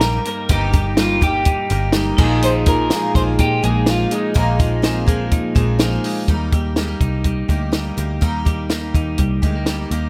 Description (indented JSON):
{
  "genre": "jangly indie pop",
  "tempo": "124 BPM",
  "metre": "4/4",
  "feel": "straight",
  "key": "Eb major",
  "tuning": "A4 = 441 Hz",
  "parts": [
    { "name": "electric guitar through a small old amp", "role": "melody", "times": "0.0-5.8 s", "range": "Eb4 to C5", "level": "-24 LUFS", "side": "equal", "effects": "phaser" },
    { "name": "vibraphone with hard mallets", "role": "second line", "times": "0.0-6.2 s", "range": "Bb3 to Eb4", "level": "-29 LUFS", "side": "equal", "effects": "digital delay" },
    { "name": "picked twelve-string acoustic guitar", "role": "accompaniment", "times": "0.0-10.1 s", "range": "G2 to Ab4", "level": "-28 LUFS", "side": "equal", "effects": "none" },
    { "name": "twelve-string electric guitar", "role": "arpeggios", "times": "0.0-10.1 s", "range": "G2 to Eb4", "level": "-28 LUFS", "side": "equal", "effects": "none" },
    { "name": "vintage muted picked electric bass", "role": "bass", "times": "0.0-10.1 s", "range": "G1 to Bb2", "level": "-23 LUFS", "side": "equal", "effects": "none" },
    { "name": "compact cocktail drum kit", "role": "drums", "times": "0.0-10.0 s", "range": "crash cymbal, hi-hat, kick drum, snare drum", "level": "-20 LUFS", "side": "equal", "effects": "none" }
  ],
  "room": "light reverb",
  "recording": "none",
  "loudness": "-18 LUFS",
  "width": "mono",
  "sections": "0.0-6.3 A section; 6.3-10.1 B section",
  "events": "none",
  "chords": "0.0 Eb/G; 2.2 Bb7sus4; 6.3 Eb",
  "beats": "0.02 | 0.50 0.98 1.46 1.95 | 2.43 2.91 3.39 3.87 | 4.35 4.84 5.32 5.80 | 6.29 6.77 7.25 7.74 | 8.22 8.70 9.19 9.67"
}